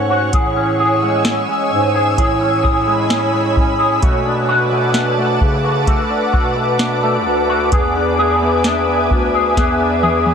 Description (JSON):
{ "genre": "dream pop", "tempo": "65 BPM", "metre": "4/4", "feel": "straight", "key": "A major", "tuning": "A4 = 440 Hz", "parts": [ { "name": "ethereal airy pad", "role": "sustained chords", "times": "0.0-10.3 s", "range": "B4 to E6", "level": "-18 LUFS", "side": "right 1 dB", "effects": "ensemble chorus, built-in reverb" }, { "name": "electric guitar with an envelope filter", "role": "arpeggios", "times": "0.0-10.3 s", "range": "E3 to G#4", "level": "-17 LUFS", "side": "left 2 dB", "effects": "ensemble chorus, ping-pong delay" }, { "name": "mellow bass clarinet", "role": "bass", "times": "0.0-10.3 s", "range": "D2 to C#3", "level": "-20 LUFS", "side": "right 1 dB", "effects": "none" }, { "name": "soft vintage rhythm box", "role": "drums", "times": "0.3-10.3 s", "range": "hi-hat, kick drum, snare drum, toms", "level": "-17 LUFS", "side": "equal", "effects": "none" } ], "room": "moderate shimmer reverb, RT60 6.8 s", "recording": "none", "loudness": "-13 LUFS", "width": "side -7 dB against mid", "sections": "0.0-10.3 A section", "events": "drum fill 9.6-10.3", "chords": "0.3 Amaj7; 4.0 Bm7; 7.7 E7" }